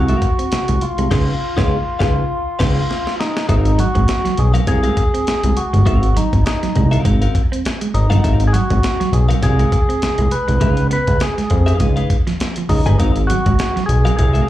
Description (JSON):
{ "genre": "funk", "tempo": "101 BPM", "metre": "4/4", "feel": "swing 56% on 16ths", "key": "Ab mixolydian", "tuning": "A4 = 440 Hz", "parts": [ { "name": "percussive tonewheel organ", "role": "melody", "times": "0.0-14.5 s", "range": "Eb4 to Cb5", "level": "-21 LUFS", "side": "equal", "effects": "overdrive, slapback echo" }, { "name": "direct-recorded clean electric guitar", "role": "accompaniment", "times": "0.0-14.5 s", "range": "C4 to Ab5", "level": "-25 LUFS", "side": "left 6 dB", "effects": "slapback echo" }, { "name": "fat analog bass", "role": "bass", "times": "0.0-14.4 s", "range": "G1 to F2", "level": "-15 LUFS", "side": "equal", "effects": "none" }, { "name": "clean electric guitar", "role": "riff", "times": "0.1-14.4 s", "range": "F3 to C4", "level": "-25 LUFS", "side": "right 6 dB", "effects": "spring reverb, slapback echo" }, { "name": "breakbeat sampler-style drum kit", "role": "drums", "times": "0.1-14.5 s", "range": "crash cymbal, hi-hat, kick drum, snare drum", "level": "-19 LUFS", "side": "equal", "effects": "none" } ], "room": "digital ambience", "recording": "live gig heard through the venue's PA, club reverb", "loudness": "-14 LUFS", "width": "side -14 dB against mid", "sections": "0.0-3.5 A section; 3.5-14.5 B section", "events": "band accent 1.1-3.5; drum fill 2.9-3.5", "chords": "0.0 Ab13; 1.1 Db9; 3.5 Ab13; 10.6 Db9; 13.0 Ab13" }